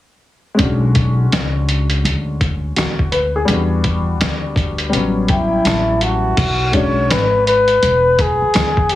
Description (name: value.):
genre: hip hop, jazz-hop.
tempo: 83 BPM.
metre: 4/4.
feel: swing 63% on 16ths.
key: B dorian.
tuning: A4 = 443 Hz.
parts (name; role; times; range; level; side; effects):
warm upright piano; accompaniment; 0.5-7.2 s; F#3 to A5; -20 LUFS; left 2 dB; plate reverb.
upright bass; bass; 0.6-9.0 s; E1 to E2; -19 LUFS; equal; none.
lo-fi sampler-style drum kit; drums; 0.6-9.0 s; crash cymbal, hi-hat, kick drum, snare drum; -18 LUFS; equal; none.
breathy flugelhorn; melody; 5.3-9.0 s; E4 to C#5; -15 LUFS; left 1 dB; plate reverb, tape echo.
room: moderate studio reverb, RT60 0.5 s.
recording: heavily compressed radio sound, multiband compression, small room reverb.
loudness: -13 LUFS.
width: side -14 dB against mid.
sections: 0.6-6.4 A section; 6.4-9.0 B section.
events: upright piano fill 4.9-6.4.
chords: 0.6 Bm69; 3.5 Em7; 4.9 A13; 6.4 Bm69.